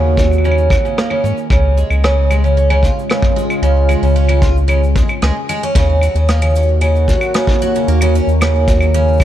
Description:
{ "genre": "folktronica", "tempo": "113 BPM", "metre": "4/4", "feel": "straight", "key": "Eb minor", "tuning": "A4 = 441 Hz", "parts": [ { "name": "warbly tape-like pad", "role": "sustained chords", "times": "0.0-9.2 s", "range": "Db3 to Db5", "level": "-21 LUFS", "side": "left 1 dB", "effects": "chorus, built-in reverb" }, { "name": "picked twelve-string acoustic guitar", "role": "arpeggios", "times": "0.0-9.2 s", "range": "Db3 to F4", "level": "-17 LUFS", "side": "right 2 dB", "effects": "low-pass filter, ping-pong delay" }, { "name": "round analog bass", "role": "bass", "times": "0.0-9.2 s", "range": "Db2 to Ab2", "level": "-13 LUFS", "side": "equal", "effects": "none" }, { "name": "cabasa, claves and rim click", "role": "drums", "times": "0.2-9.2 s", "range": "none", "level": "-22 LUFS", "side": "equal", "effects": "none" }, { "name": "kick drum", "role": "drums", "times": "0.2-9.2 s", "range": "none", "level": "-15 LUFS", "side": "equal", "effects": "none" } ], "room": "light reverb", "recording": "dark, warm production", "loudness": "-11 LUFS", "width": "side -12 dB against mid", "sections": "0.0-9.2 A section", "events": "none", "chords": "0.0 Ebm7; 1.5 Db; 5.8 Ebm7" }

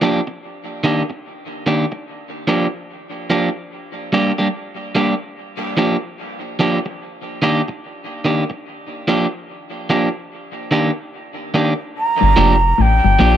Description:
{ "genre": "reggae", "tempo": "73 BPM", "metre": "4/4", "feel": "swing 62% on 16ths", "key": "G minor", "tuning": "A4 = 439 Hz", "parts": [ { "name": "electric guitar at the edge of break-up", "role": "accompaniment", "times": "0.0-13.4 s", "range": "Eb3 to G4", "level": "-18 LUFS", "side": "right 1 dB", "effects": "dub echo" }, { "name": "mellow concert flute", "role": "melody", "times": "12.0-13.4 s", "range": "G5 to Bb5", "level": "-15 LUFS", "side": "right 2 dB", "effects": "dub echo" }, { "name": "semi-hollow electric guitar", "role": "riff", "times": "12.2-13.3 s", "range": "F2 to Bb2", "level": "-21 LUFS", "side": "left 9 dB", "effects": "none" }, { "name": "soft dub sub bass", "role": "bass", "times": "12.2-13.4 s", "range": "F1 to Bb1", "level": "-14 LUFS", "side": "equal", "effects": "none" } ], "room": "light reverb, small room ambience", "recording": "none", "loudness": "-16 LUFS", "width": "side -10 dB against mid", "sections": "0.0-12.0 A section; 12.0-13.4 B section", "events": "break 0.0-12.0", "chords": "0.4 Ebmaj7; 2.1 Gm7; 3.7 Gm; 5.4 Gm7; 7.0 Ebmaj7; 8.7 Gm7; 10.3 Ebmaj7; 12.0 Gm7" }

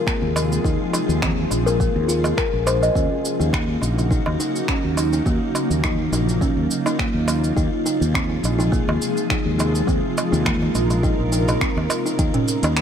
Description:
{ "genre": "organic downtempo", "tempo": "104 BPM", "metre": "4/4", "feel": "swing 54% on 16ths", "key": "unclear", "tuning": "A4 = 440 Hz", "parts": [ { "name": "granular cloud pad", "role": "sustained chords", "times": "0.0-12.8 s", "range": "C3 to Bb4", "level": "-24 LUFS", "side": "equal", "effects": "built-in reverb, sidechain pumping" }, { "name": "buzzing kalimba", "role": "arpeggios", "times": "0.0-12.8 s", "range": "Bb3 to Eb5", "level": "-24 LUFS", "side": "left 1 dB", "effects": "vintage 12-bit sampler grit, ping-pong delay" }, { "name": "electronic kick drum", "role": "drums", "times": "0.1-12.3 s", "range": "none", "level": "-24 LUFS", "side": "equal", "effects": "overdrive" }, { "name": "organic electronic drum kit", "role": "drums", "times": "0.1-12.8 s", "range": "finger snaps, hi-hat, shaker, toms", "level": "-27 LUFS", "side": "right 1 dB", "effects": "none" }, { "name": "mellow fretless electric bass", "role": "bass", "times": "0.2-12.8 s", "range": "Bb1 to Eb2", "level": "-22 LUFS", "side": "equal", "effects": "sidechain pumping" }, { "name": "darbuka", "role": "percussion", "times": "0.4-12.7 s", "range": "none", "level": "-29 LUFS", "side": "right 2 dB", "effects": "none" } ], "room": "light reverb", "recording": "none", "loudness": "-18 LUFS", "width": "side -8 dB against mid", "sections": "0.0-12.2 A section", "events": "none", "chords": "0.0 Fm; 3.0 Ebm7; 7.6 Fm; 12.2 Ebm7" }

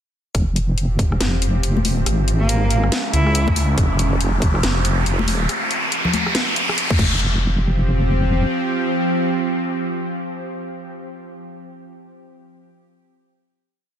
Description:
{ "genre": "deep dubstep", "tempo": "140 BPM", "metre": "4/4", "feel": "swing 60% on 16ths, half-time", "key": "F minor", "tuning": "A4 = 441 Hz", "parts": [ { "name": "bowed-like drone", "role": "sustained chords", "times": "0.7-10.8 s", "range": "Db3 to G4", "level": "-25 LUFS", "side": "equal", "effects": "built-in reverb, vintage 12-bit sampler grit" }, { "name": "deep soft wobble bass", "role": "bass", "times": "0.3-8.4 s", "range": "F1 to Db2", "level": "-18 LUFS", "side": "equal", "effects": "chorus" }, { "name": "electronic kick drum", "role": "drums", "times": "0.3-7.1 s", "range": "none", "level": "-19 LUFS", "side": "equal", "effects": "studio reverb" }, { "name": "garage drum kit", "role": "drums", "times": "0.3-7.1 s", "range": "crash cymbal, hi-hat, rim click, snare drum", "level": "-24 LUFS", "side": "left 1 dB", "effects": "studio reverb" }, { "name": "riser", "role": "sound effects", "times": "1.9-7.2 s", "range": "none", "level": "-24 LUFS", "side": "equal", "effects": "none" }, { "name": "congas", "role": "percussion", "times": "1.8-7.1 s", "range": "none", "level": "-26 LUFS", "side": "left 4 dB", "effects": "dub echo" }, { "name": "rich cello", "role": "melody", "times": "2.4-3.6 s", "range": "Bb3 to E4", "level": "-26 LUFS", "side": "right 1 dB", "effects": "dub echo" } ], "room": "light reverb, digital ambience", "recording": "dense, heavily limited modern master", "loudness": "-17 LUFS", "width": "side -9 dB against mid", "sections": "0.3-7.2 build; 7.2-10.6 final hit", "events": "build-up 0.3-7.2; riser 1.9-7.2", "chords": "0.3 F5; 2.1 Db5; 3.8 F5; 5.5 N.C.; 7.0 F5" }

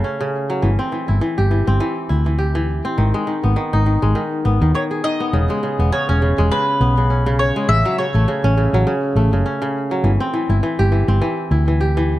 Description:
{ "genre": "folktronica", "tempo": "102 BPM", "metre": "4/4", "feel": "swing 56% on 16ths", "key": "unclear", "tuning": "A4 = 439 Hz", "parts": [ { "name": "kora", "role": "arpeggios", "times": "0.0-12.2 s", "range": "C#3 to G#4", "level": "-20 LUFS", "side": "equal", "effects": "digital delay" }, { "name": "hollow-body short-scale fingered electric bass", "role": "bass", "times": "0.6-12.2 s", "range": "E1 to D#2", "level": "-16 LUFS", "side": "equal", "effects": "none" }, { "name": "mandolin", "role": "melody", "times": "4.8-8.5 s", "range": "B4 to E5", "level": "-21 LUFS", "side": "left 1 dB", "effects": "digital delay" } ], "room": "light reverb, small room reverb", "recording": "dark, warm production", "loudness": "-15 LUFS", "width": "side -15 dB against mid", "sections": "0.0-12.2 A section", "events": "none", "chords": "0.0 A6; 0.6 C/G; 3.0 G#m; 5.3 E6; 7.7 A6; 10.0 C/G" }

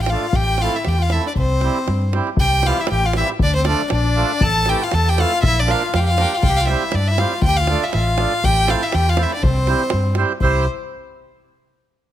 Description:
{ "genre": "balkan folk, Balkan wedding band", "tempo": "119 BPM", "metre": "2/4", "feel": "swing 55% on 16ths", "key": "C mixolydian", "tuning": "A4 = 439 Hz", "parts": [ { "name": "rich violin", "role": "melody", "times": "0.0-10.6 s", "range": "C5 to A5", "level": "-21 LUFS", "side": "equal", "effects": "none" }, { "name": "mellow trumpet", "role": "second line", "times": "0.0-10.6 s", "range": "C4 to C5", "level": "-26 LUFS", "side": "left 6 dB", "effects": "none" }, { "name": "vintage muted fingered electric bass", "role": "bass", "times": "0.0-10.7 s", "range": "A1 to G2", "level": "-19 LUFS", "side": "equal", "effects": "none" }, { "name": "accordion", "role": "accompaniment", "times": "0.1-10.7 s", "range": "E3 to D5", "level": "-25 LUFS", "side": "right 7 dB", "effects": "none" }, { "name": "davul", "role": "percussion", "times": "0.1-10.6 s", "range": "none", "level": "-24 LUFS", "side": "equal", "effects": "none" } ], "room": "light reverb", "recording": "close, detailed microphones", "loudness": "-15 LUFS", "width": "side -12 dB against mid", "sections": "0.0-2.4 A section; 2.4-10.4 A section", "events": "speeding up 0.0-11.4", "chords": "0.4 Am; 1.4 C; 3.4 Dm; 4.4 Am; 5.4 Bb; 6.4 C; 7.4 Dm; 8.4 Am; 9.4 C" }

